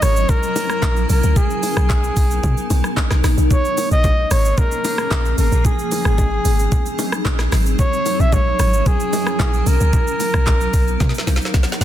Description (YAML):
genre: amapiano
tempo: 112 BPM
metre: 4/4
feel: straight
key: unclear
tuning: A4 = 440 Hz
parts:
  - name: trumpet with bucket mute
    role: melody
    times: 0.0-11.5 s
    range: Ab4 to Fb5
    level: -22 LUFS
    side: equal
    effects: ping-pong delay
  - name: granular cloud pad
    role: sustained chords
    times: 0.0-11.8 s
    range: F3 to Bb4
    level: -24 LUFS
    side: equal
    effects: built-in reverb, sidechain pumping
  - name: deep log drum bass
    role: bass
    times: 0.0-11.8 s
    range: Ab1 to B2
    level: -17 LUFS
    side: equal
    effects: none
  - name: afro-pop drum kit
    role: drums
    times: 0.0-11.8 s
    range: handclaps, hi-hat, kick drum, rim click, shaker, snare drum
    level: -20 LUFS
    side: equal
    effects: none
  - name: congas and bongos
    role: percussion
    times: 0.3-11.7 s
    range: none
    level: -27 LUFS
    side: left 2 dB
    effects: none
room: digital ambience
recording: dense, heavily limited modern master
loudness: -15 LUFS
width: side -12 dB against mid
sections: 0.0-11.8 A section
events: drum fill 11.0-11.8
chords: 0.0 Gb7; 1.1 Bmaj7; 3.5 Bbm7; 5.6 Ab7; 7.8 Gb7; 9.7 Bmaj7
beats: 0.29 0.83 | 1.36 1.90 2.43 2.97 | 3.50 4.04 4.58 5.11 | 5.65 6.18 6.72 7.25 | 7.79 8.33 8.86 9.40 | 9.93 10.47 11.01 11.54